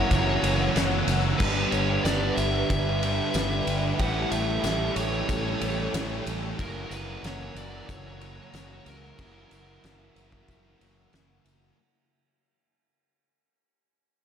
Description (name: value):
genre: rock, shoegaze and dream pop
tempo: 92 BPM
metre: 4/4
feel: straight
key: unclear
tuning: A4 = 440 Hz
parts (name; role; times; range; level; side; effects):
- biting lead guitar; melody; 0.0-11.1 s; A#4 to F#5; -32 LUFS; left 1 dB; overdrive, tape echo
- soft string machine; sustained chords; 0.0-11.8 s; G4 to E6; -35 LUFS; equal; phaser, ensemble chorus
- crunchy overdriven guitar; riff; 0.0-11.8 s; F#2 to G4; -34 LUFS; left 9 dB; analog chorus
- overdriven electric guitar; riff; 0.0-11.8 s; F#2 to E4; -32 LUFS; right 8 dB; reverse reverb
- tight distorted guitar; riff; 0.0-11.8 s; F#2 to A3; -36 LUFS; left 1 dB; distortion
- fingered electric bass; bass; 0.0-11.7 s; F#1 to C#2; -31 LUFS; left 1 dB; none
- loose indie drum kit; drums; 0.1-11.6 s; crash cymbal, kick drum, ride cymbal, snare drum; -31 LUFS; equal; none
- tambourine; percussion; 0.1-11.6 s; none; -42 LUFS; left 10 dB; none
room: moderate lush hall reverb, RT60 2.8 s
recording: dreamy mix soaked in reverb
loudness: -24 LUFS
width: side -8 dB against mid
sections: 0.0-11.8 A section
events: fade-out 0.0-11.8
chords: 0.0 F#7; 1.4 G6; 4.0 A7; 6.6 F#7